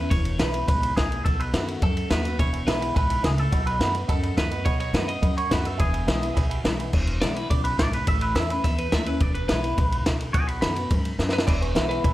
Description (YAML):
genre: rockabilly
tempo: 211 BPM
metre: 4/4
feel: straight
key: E major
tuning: A4 = 440 Hz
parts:
  - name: twangy electric guitar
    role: melody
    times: 0.0-12.1 s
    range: G#4 to B5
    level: -29 LUFS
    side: right 2 dB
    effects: phaser, analog delay
  - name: picked steel-string acoustic guitar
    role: accompaniment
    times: 0.0-12.1 s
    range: E2 to F#4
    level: -31 LUFS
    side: left 3 dB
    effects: none
  - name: upright bass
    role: bass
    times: 0.0-12.1 s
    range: E1 to F#2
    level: -27 LUFS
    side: equal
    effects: none
  - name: compact cocktail drum kit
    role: drums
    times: 0.1-12.1 s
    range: crash cymbal, kick drum, ride cymbal, snare drum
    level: -24 LUFS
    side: equal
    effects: none
  - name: bright upright piano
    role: accompaniment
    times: 2.4-6.9, 11.5-12.1 s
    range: D#5 to C#6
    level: -35 LUFS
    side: right 11 dB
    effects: none
room: light reverb, small room ambience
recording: none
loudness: -21 LUFS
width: side -15 dB against mid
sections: 0.0-6.9 A section; 6.9-12.1 B section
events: clean electric guitar solo 6.9-12.1; drum fill 11.2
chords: 0.1 E; 1.2 B7; 2.4 E; 3.5 B7; 5.8 E; 8.1 A; 9.2 E; 10.3 B5; 11.5 E